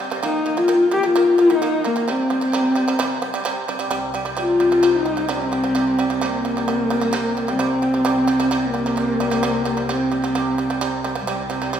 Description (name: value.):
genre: mongolian traditional, Mongolian folk.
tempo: 130 BPM.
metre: 4/4.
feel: straight.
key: C yu mode.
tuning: A4 = 440 Hz.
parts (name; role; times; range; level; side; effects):
shamisen; arpeggios; 0.0-11.8 s; C3 to Bb3; -23 LUFS; right 4 dB; none.
dark horsehead fiddle; melody; 0.2-11.1 s; Bb3 to G4; -18 LUFS; left 2 dB; none.
rich cello; drone; 3.9-11.8 s; C2; -29 LUFS; right 1 dB; none.
room: wet recital hall reverb, RT60 1.8 s.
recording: recorded in a church or concert hall.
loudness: -17 LUFS.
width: side -9 dB against mid.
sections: 0.0-3.9 A section; 3.9-11.8 B section.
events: none.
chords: 0.2 Eb5; 2.1 C5.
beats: | 0.24 0.70 1.16 1.62 | 2.08 2.54 3.00 3.46 | 3.92 4.38 4.83 5.29 | 5.75 6.21 6.67 7.13 | 7.59 8.05 8.52 8.97 | 9.44 9.90 10.36 10.82 | 11.28 11.74.